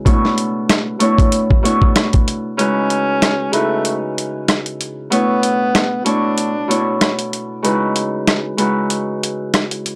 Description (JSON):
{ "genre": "hip hop, boom-bap hip-hop", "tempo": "95 BPM", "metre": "4/4", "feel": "swing 58% on 16ths", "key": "C# phrygian", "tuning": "A4 = 440 Hz", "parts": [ { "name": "Celtic harp", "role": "accompaniment", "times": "0.0-10.0 s", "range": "B2 to C#5", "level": "-20 LUFS", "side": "equal", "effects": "cassette tape, high-pass filter, low-pass filter" }, { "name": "dusty soul sampler-style drum kit", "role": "drums", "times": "0.1-10.0 s", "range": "hi-hat, kick drum, rim click, snare drum", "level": "-18 LUFS", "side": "equal", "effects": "none" }, { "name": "breathy tenor saxophone", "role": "melody", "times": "2.6-7.1 s", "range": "A3 to D4", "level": "-22 LUFS", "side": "equal", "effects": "high-pass filter, low-pass filter" } ], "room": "little or no reverb", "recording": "dry, gritty hardware recording, transformer saturation", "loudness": "-17 LUFS", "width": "mono", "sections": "0.0-2.6 A section; 2.6-10.0 B section", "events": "break 2.6-10.0", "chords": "0.1 Bm11; 2.6 C#m11; 5.1 Bm11; 7.6 C#m11" }